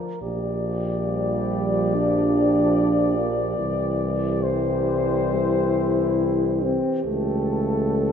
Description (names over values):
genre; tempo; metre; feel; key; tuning
classical, hymn-like piece for brass band; 62-74 BPM; 4/4; rubato; unclear; A4 = 440 Hz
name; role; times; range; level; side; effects
mellow French horn section; second line; 0.0-8.1 s; G4 to Bb4; -28 LUFS; right 6 dB; none
warm euphonium; accompaniment; 0.0-8.1 s; F3 to E4; -24 LUFS; left 1 dB; none
mellow flugelhorn; melody; 0.2-8.1 s; A4 to D5; -28 LUFS; left 6 dB; none
warm trombone; accompaniment; 0.2-8.1 s; E3 to F3; -32 LUFS; right 4 dB; none
warm tuba; bass; 0.2-8.1 s; Bb1 to C#2; -26 LUFS; equal; none
room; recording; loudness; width
moderate scoring stage reverb, RT60 1.7 s; nothing above 7.6 kHz; -20 LUFS; side -7 dB against mid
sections
0.0-8.1 A section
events
none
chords
0.2 Gm7/Bb; 3.6 C; 7.1 A7/C#